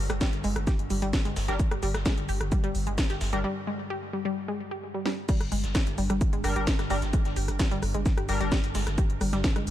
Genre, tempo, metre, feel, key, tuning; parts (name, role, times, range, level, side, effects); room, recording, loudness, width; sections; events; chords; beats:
driving peak-time techno; 130 BPM; 4/4; straight; G phrygian; A4 = 437 Hz
saturated sub bass; bass; 0.0-9.7 s; G1; -31 LUFS; equal; overdrive, sidechain pumping, low-pass filter
metallic inharmonic drone; drone; 0.0-9.7 s; G2 to D3; -39 LUFS; equal; chorus, built-in reverb, sidechain pumping
wide unison pluck; riff; 0.1-9.6 s; G3 to G4; -32 LUFS; equal; sidechain pumping, ping-pong delay
breakbeat sampler-style drum kit; drums; 0.1-9.7 s; hi-hat, shaker, snare drum; -41 LUFS; equal; sidechain pumping on perc, high-pass filter on perc, studio reverb, high-pass filter on snare, sidechain pumping on hats, high-pass filter on hats, high-pass filter on room
techno drum kit; drums; 0.1-9.7 s; crash cymbal, hi-hat, rim click, snare drum; -34 LUFS; equal; overdrive, sidechain pumping on hats, studio reverb, sidechain pumping on cymbals
electronic kick drum; drums; 0.2-9.5 s; -27 LUFS; equal; overdrive, studio reverb
sync-sweep polysynth; stabs; 1.5-3.4, 6.4-8.5 s; G3 to Bb4; -36 LUFS; left 2 dB; chorus, sidechain pumping, ping-pong delay
little or no reverb; dark, warm production; -25 LUFS; side -12 dB against mid
0.0-5.3 A section; 5.3-9.7 B section
break 3.4-5.3; drum fill 5.1; drop 5.3-9.7
0.0 G5
0.21 0.67 1.13 | 1.59 2.06 2.52 2.98 | 3.44 3.90 4.36 4.83 | 5.29 5.75 6.21 6.67 | 7.13 7.59 8.06 8.52 | 8.98 9.44